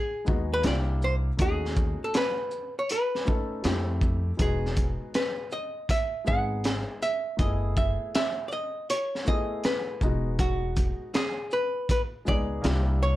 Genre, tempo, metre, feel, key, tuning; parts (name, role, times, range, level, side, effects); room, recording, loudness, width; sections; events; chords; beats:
hip hop, jazz-hop; 80 BPM; 4/4; swing 66% on 16ths; E major; A4 = 440 Hz
archtop guitar, miked and amplified; melody; 0.0-13.2 s; F#4 to F#5; -29 LUFS; equal
dark upright piano; accompaniment; 0.2-13.2 s; G3 to A4; -34 LUFS; left 2 dB
upright bass; bass; 0.3-13.2 s; E1 to F2; -28 LUFS; equal
crunchy breakbeat drum kit; drums; 0.3-13.2 s; hi-hat, kick drum, shaker, snare drum; -28 LUFS; equal
light reverb; dark, warm production; -25 LUFS; side -15 dB against mid
0.0-13.2 A section
0.0 Emaj9 (rootless); 0.6 C9; 1.4 B9/D#; 3.6 Fmaj9; 4.4 Emaj9; 7.4 F#m11; 10.0 Emaj9; 12.6 C9
0.64 | 1.39 2.14 2.89 3.64 | 4.39 5.14 5.89 6.64 | 7.39 8.14 8.89 9.64 | 10.39 11.14 11.89 12.64